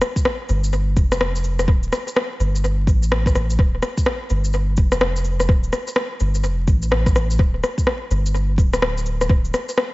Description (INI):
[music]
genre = future garage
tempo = 126 BPM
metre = 4/4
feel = swing 62% on 16ths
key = D minor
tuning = A4 = 440 Hz
[part]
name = electronic rim click, cabasa and shaker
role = drums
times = 0.0-9.9 s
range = none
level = -22 LUFS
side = left 1 dB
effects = overdrive, small room ambience, tape echo
[part]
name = electronic kick drum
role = drums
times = 0.2-9.4 s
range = none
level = -18 LUFS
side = equal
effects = small room ambience
[part]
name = soft dub sub bass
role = bass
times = 0.5-9.5 s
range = D1 to A1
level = -20 LUFS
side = equal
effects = sidechain pumping
[sound]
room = light reverb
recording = echo-heavy mix, vinyl crackle, nothing above 7.8 kHz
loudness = -17 LUFS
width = side -20 dB against mid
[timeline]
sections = 0.0-9.9 A section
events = none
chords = none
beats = 0.26 0.73 1.21 | 1.68 2.16 2.64 3.11 | 3.59 4.07 4.54 5.02 | 5.49 5.97 6.45 6.92 | 7.40 7.87 8.35 8.83 | 9.30 9.78